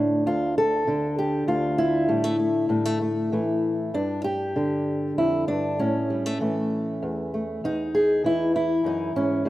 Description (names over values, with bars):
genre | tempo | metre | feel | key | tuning
folk, solo fingerstyle acoustic guitar | 98 BPM | 3/4 | rubato | unclear | A4 = 440 Hz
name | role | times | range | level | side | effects
fingerpicked old ladder-braced acoustic guitar | solo | 0.0-9.5 s | D2 to A4 | -22 LUFS | equal | none
room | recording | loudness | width
moderate plate reverb, RT60 3.2 s | rough home demo mix | -22 LUFS | side -16 dB against mid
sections
0.0-9.5 A section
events
none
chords
0.3 N.C.; 2.1 Asus4; 3.9 G5; 5.8 A; 7.6 E